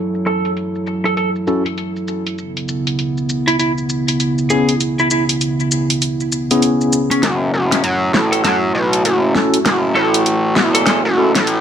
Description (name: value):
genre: glitch hop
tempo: 99 BPM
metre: 4/4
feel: swing 61% on 16ths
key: F# minor pentatonic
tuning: A4 = 440 Hz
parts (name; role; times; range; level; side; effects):
- dark analog pad; sustained chords; 0.0-11.6 s; C#3 to A4; -20 LUFS; right 2 dB; chorus
- pop drum kit; drums; 0.1-11.6 s; hi-hat, shaker, snare drum; -19 LUFS; left 1 dB; small room ambience
- lightly driven lead guitar; melody; 0.3-11.0 s; C#4 to A4; -21 LUFS; right 1 dB; ping-pong delay
- tine electric piano; stabs; 1.5-11.3 s; B3 to A4; -19 LUFS; left 2 dB; medium tremolo, low-pass filter, ping-pong delay
- gritty driven synth bass; bass; 7.2-11.6 s; E1 to F#2; -16 LUFS; left 1 dB; high-pass filter
room: light reverb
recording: high-pass filter, low-pass filter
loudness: -14 LUFS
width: side -8 dB against mid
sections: 0.0-7.2 A section; 7.2-11.6 B section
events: filter sweep on tine electric piano 0.0-7.2; build-up 7.2-11.6; drum fill 7.2-11.6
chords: 0.0 F#m7; 2.4 C#m7; 7.2 F#m7